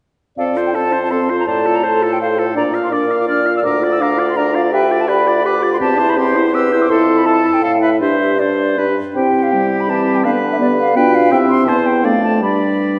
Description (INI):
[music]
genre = quick classical-period movement for wind quintet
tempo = 166 BPM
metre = 3/4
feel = straight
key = F major, C major from 4.7 s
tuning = A4 = 440 Hz
[part]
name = concert flute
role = melody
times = 0.4-13.0 s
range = C5 to F6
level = -21 LUFS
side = equal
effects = none
[part]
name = clear oboe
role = second line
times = 0.4-13.0 s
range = G4 to F5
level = -23 LUFS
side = equal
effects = none
[part]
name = clear French horn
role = accompaniment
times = 0.4-13.0 s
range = G3 to A4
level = -20 LUFS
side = equal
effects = none
[part]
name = dark clarinet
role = accompaniment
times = 0.4-13.0 s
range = C4 to F5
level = -23 LUFS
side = equal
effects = none
[part]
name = warm bassoon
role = bass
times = 0.4-13.0 s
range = D2 to E3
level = -22 LUFS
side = equal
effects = none
[sound]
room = wet concert hall reverb, RT60 1.9 s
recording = heard from further back in the room, nothing above 10.4 kHz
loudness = -15 LUFS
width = mono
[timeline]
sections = 0.4-9.2 A section; 9.2-13.0 B section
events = none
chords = 0.4 F; 1.5 F/A; 2.6 Bb; 3.6 Bb/D; 4.7 G7/D; 5.8 C/E; 6.9 Fmaj7; 8.0 Gsus4; 9.2 C; 10.2 Bdim/D; 11.3 C; 12.0 Dm/F; 12.4 G